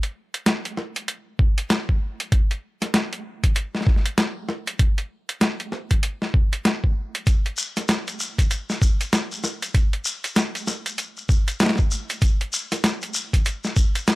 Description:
glitch hop; 97 BPM; 4/4; swing 61% on 16ths
boom bap sampler-style drum kit; drums; 0.0-14.2 s; hi-hat, snare drum; -23 LUFS; equal; overdrive
electronic kick drum; drums; 1.4-13.9 s; -19 LUFS; equal; overdrive
shekere; percussion; 7.3-14.2 s; -29 LUFS; left 2 dB
little or no reverb; -20 LUFS; side -20 dB against mid
0.0-14.2 A section

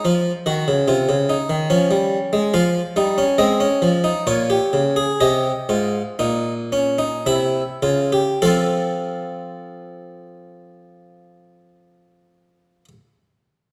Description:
classical, baroque-style 3-part fugue for harpsichord; 49-73 BPM; 3/4; straight; A4 = 440 Hz
harpsichord; solo; 0.0-12.9 s; Ab2 to F5; -20 LUFS; equal
wet recital hall reverb, RT60 1.5 s; -19 LUFS; mono
0.0-8.4 A section; 8.4-12.0 B section
slowing down 1.3-8.4
0.0 F5; 1.7 Db/F; 2.5 Fm; 4.3 Bbm; 5.2 C7sus4; 7.3 C; 8.4 F

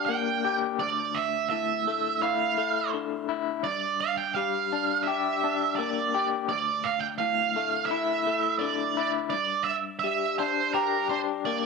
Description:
rock; 84 BPM; 4/4; straight; D minor; A4 = 439 Hz
octave-fuzz lead guitar; melody; 0.0-11.7 s; Bb4 to G5; -27 LUFS; right 10 dB; distortion, slapback echo
electric guitar through a small old amp; riff; 0.0-11.7 s; D2 to G4; -29 LUFS; left 14 dB; tremolo
moderate spring reverb, RT60 2.1 s; 1960s-style stereo with parts hard left and right; -25 LUFS; side -4 dB against mid
0.0-11.7 A section
0.0 Gm; 0.8 Dmadd9; 3.6 Gm; 6.5 Dmadd9; 9.3 G5

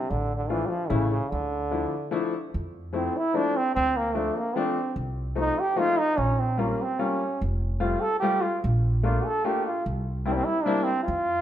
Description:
musette waltz; 148 BPM; 3/4; straight; F major; A4 = 436 Hz
bright trombone; melody; 0.0-11.4 s; C3 to A4; -26 LUFS; right 2 dB
upright bass; bass; 0.1-11.4 s; F1 to F2; -27 LUFS; right 1 dB
bright upright piano; accompaniment; 0.5-10.9 s; E3 to F4; -29 LUFS; left 5 dB
moderate recital hall reverb, RT60 1.6 s; minimal, uncompressed stereo recording; -24 LUFS; side -11 dB against mid
0.0-2.5 A section; 2.5-11.4 B section
0.1 Dm/A; 0.9 A; 1.3 Dmadd9; 2.5 Fmaj7; 3.7 Dm7; 5.0 F7/C; 6.2 Bbm6; 7.4 Fadd9; 8.6 Bbmaj7; 9.8 C7

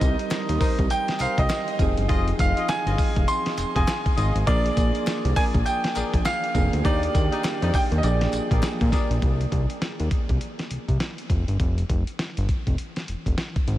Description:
R&B, new jack swing; 101 BPM; 4/4; swing 61% on 16ths; A4 = 441 Hz
bright grand piano; melody; 0.0-8.6 s; D5 to C6; -28 LUFS; right 1 dB
soft electric-piano-like synth keys; accompaniment; 0.0-9.2 s; Eb3 to Bb4; -30 LUFS; right 2 dB; chorus, tremolo
fat analog bass; bass; 0.0-13.8 s; F1 to Bb2; -24 LUFS; equal
dusty soul sampler-style drum kit; drums; 0.0-13.8 s; hi-hat, kick drum, snare drum, tambourine; -25 LUFS; equal; vintage 12-bit sampler grit
group handclap; percussion; 0.3-8.8 s; -45 LUFS; left 3 dB
mellow horn section; stabs; 0.6-9.1 s; Eb4 to Eb5; -33 LUFS; left 3 dB; diffuse ambient delay
moderate huge ambient reverb, RT60 7.2 s; dreamy mix soaked in reverb; -21 LUFS; side -14 dB against mid
0.0-9.2 A section; 9.2-13.8 B section
0.0 Cm7; 1.8 Fm7; 4.5 Bb7; 6.8 Ebmaj7; 8.0 Bb7; 9.2 N.C.

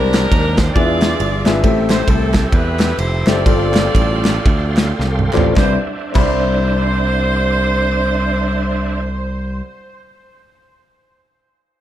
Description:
uptempo gospel; 102-136 BPM; 4/4; swing 60% on 8ths; C major; A4 = 439 Hz
edgy saxophone section; melody; 0.0-9.6 s; C4 to D5; -21 LUFS; right 1 dB; tape echo
warm upright piano; accompaniment; 0.0-9.6 s; C2 to B5; -21 LUFS; left 4 dB
bright tonewheel organ; sustained chords; 0.0-9.0 s; D4 to D6; -25 LUFS; right 4 dB; slow rotary speaker, overdrive, chorus vibrato
modern bright picked electric bass; bass; 0.0-9.6 s; F1 to E2; -18 LUFS; equal
modern studio drum kit; drums; 0.1-6.4 s; crash cymbal, kick drum, ride cymbal, snare drum, toms; -17 LUFS; equal
group handclap; percussion; 0.1-6.3 s; -31 LUFS; right 3 dB
light reverb; dark, warm production; -13 LUFS; side -12 dB against mid
0.0-5.6 A section; 5.6-10.3 B section
slowing down 1.6-5.6; drum fill 5.0-5.6
0.0 Abmaj9#11/C; 0.8 E7b9; 1.6 Am7; 3.5 G9sus4; 5.6 Cmaj9

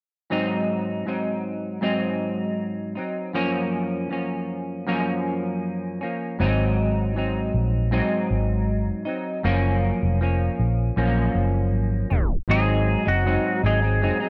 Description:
indie pop, bedroom pop; 79 BPM; 4/4; straight; A4 = 440 Hz
semi-hollow electric guitar; accompaniment; 0.3-14.3 s; Gb2 to Eb4; -26 LUFS; equal; analog chorus, warbly pitch drift
vintage muted fingered electric bass; bass; 6.4-14.1 s; F1 to Bb1; -24 LUFS; equal
clean lap steel guitar; melody; 12.5-14.3 s; Gb4 to Ab4; -27 LUFS; equal; analog chorus
light reverb; cassette tape, tape stop; -24 LUFS; mono
0.3-12.5 A section; 12.5-14.3 B section
tape stop 12.1-12.5
0.3 Ab7; 3.3 Gbmaj7; 6.4 Ab7; 9.4 Gbmaj7; 12.5 Ab7

